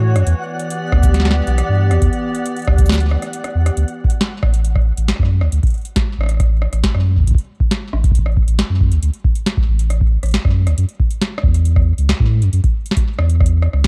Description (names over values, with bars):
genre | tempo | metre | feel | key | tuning
IDM | 137 BPM | 4/4 | straight | D major | A4 = 439 Hz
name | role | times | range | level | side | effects
hollow soft pad | sustained chords | 0.0-3.8 s | E3 to D5 | -25 LUFS | equal | chorus, sidechain pumping
warm sub bass | bass | 0.0-13.9 s | A1 to A2 | -17 LUFS | equal | none
flickering grainy texture | texture | 0.0-3.8 s | F#5 | -33 LUFS | equal | built-in reverb
booming analog drum machine | drums | 0.2-13.9 s | hi-hat, rim click, shaker, snare drum | -25 LUFS | equal | digital delay
electronic kick drum | drums | 0.9-13.9 s | none | -18 LUFS | equal | none
room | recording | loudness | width
little or no reverb | dark, warm production | -16 LUFS | mono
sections
0.0-3.8 A section; 3.8-13.9 B section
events
kick drops out 2.9-3.8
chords
0.3 Em7; 3.8 D (rootless); 10.8 N.C.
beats
| 0.27 0.70 1.14 1.58 | 2.02 2.46 2.89 3.33 | 3.77 4.21 4.65 5.08 | 5.52 5.96 6.40 6.84 | 7.27 7.71 8.15 8.59 | 9.03 9.46 9.90 10.34 | 10.78 11.22 11.65 12.09 | 12.53 12.97 13.40 13.84